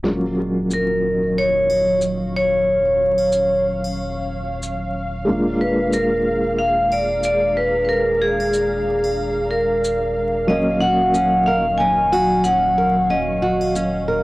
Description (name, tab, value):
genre	trip hop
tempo	92 BPM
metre	4/4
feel	swing 57% on 16ths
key	Eb minor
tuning	A4 = 437 Hz
part	felt-muted upright piano	accompaniment	0.0-14.2 s	Gb3 to Eb5	-24 LUFS	equal	tremolo, cassette tape, tape echo
part	round analog bass	bass	0.0-14.2 s	Eb1	-30 LUFS	equal	none
part	bowed-like drone	texture	1.9-14.2 s	F5	-31 LUFS	equal	built-in reverb, cassette tape, plate reverb
part	string machine, cellos	sustained chords	0.1-14.2 s	Gb3 to Db6	-26 LUFS	equal	ensemble chorus, cassette tape
part	vibraphone with hard mallets	melody	0.7-14.2 s	Ab4 to Ab5	-18 LUFS	equal	cassette tape, plate reverb
part	maracas and triangle	percussion	0.7-13.9 s	none	-36 LUFS	left 1 dB	none
part	nylon-string guitar	arpeggios	10.5-14.2 s	Db4 to Bb4	-24 LUFS	right 1 dB	cassette tape, dub echo
room	light reverb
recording	home recording on cassette, vinyl crackle, tape stop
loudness	-16 LUFS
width	side -19 dB against mid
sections	0.1-14.2 A section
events	filter sweep on string machine 0.1-14.2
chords	0.1 Ebm7; 5.3 Bb7/Eb; 10.5 Ebm7